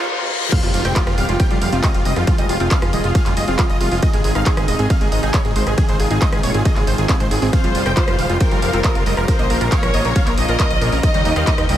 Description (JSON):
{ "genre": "uplifting trance", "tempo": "137 BPM", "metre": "4/4", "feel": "straight", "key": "F minor", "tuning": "A4 = 441 Hz", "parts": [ { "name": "dense compressed supersaw", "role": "melody", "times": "0.0-11.8 s", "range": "Eb4 to G5", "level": "-23 LUFS", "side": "right 1 dB", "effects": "sidechain pumping, tape echo" }, { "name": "lush unison pad", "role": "sustained chords", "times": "0.0-11.8 s", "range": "C3 to Ab4", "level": "-26 LUFS", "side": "left 1 dB", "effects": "chorus, sidechain pumping" }, { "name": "wide unison pluck", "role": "arpeggios", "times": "0.0-11.8 s", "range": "Eb3 to Bb4", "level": "-26 LUFS", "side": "right 2 dB", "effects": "sidechain pumping, tape echo" }, { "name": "riser, reverse cymbal and impact", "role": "sound effects", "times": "0.0-2.3 s", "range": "none", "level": "-28 LUFS", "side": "left 2 dB", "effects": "none" }, { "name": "electronic kick drum", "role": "drums", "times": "0.5-11.6 s", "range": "none", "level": "-18 LUFS", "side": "equal", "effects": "overdrive" }, { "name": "punchy analog drum machine", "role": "drums", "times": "0.5-11.8 s", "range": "crash cymbal, handclaps, hi-hat, ride cymbal, rim click", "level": "-25 LUFS", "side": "right 1 dB", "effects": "sidechain pumping on hats, sidechain pumping on cymbals" }, { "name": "fat analog bass", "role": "bass", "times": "0.6-11.8 s", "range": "Eb1 to Eb2", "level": "-21 LUFS", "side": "equal", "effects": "sidechain pumping" }, { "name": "warm studio violin section", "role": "second line", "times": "7.5-11.8 s", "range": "Bb4 to Eb5", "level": "-22 LUFS", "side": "left 2 dB", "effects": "tape echo" } ], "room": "moderate huge ambient reverb, RT60 9.3 s", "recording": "dreamy mix soaked in reverb, high-pass filter", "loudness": "-14 LUFS", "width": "side -12 dB against mid", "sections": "0.5-11.8 A section", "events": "reverse cymbal 0.0-0.5; drop 0.5-11.8; impact 0.5-2.3", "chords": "0.0 N.C.; 0.5 Fmadd9; 4.0 Ab; 7.5 Fmadd9; 9.3 Bbm; 11.0 Eb" }